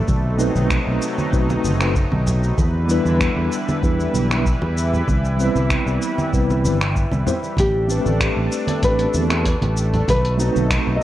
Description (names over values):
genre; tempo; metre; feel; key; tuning
sunset chillout; 96 BPM; 4/4; straight; A minor; A4 = 440 Hz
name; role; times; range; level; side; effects
lush unison pad; sustained chords; 0.0-11.0 s; C3 to B4; -26 LUFS; equal; chorus
fingered electric bass; bass; 0.1-11.0 s; F#1 to E2; -20 LUFS; equal; none
dusty soul sampler-style drum kit; drums; 0.1-10.8 s; finger snaps, hi-hat, shaker; -27 LUFS; equal; none
electronic kick drum; drums; 0.1-10.8 s; none; -22 LUFS; equal; overdrive
congas; percussion; 0.1-10.7 s; none; -27 LUFS; right 2 dB; none
mellow tine electric piano; accompaniment; 0.4-11.0 s; G3 to C5; -23 LUFS; moving between left 4 dB and right 4 dB; medium stereo tremolo, auto-pan, low-pass filter, ping-pong delay
nylon-string guitar; melody; 7.6-11.0 s; G4 to D#5; -24 LUFS; equal; digital delay
room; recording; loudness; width
light reverb; worn, warbling old tape, cassette tape, warbly pitch drift; -17 LUFS; side -14 dB against mid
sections
0.0-11.0 A section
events
filter sweep on tine electric piano 0.0-11.0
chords
0.1 B7b9; 2.6 Em7; 5.1 Cmaj7; 7.6 Am11; 10.1 B7b9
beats
| 0.08 0.71 1.33 1.96 | 2.58 3.21 3.83 4.46 | 5.08 5.71 6.33 6.96 | 7.58 8.21 8.83 9.46 | 10.08 10.71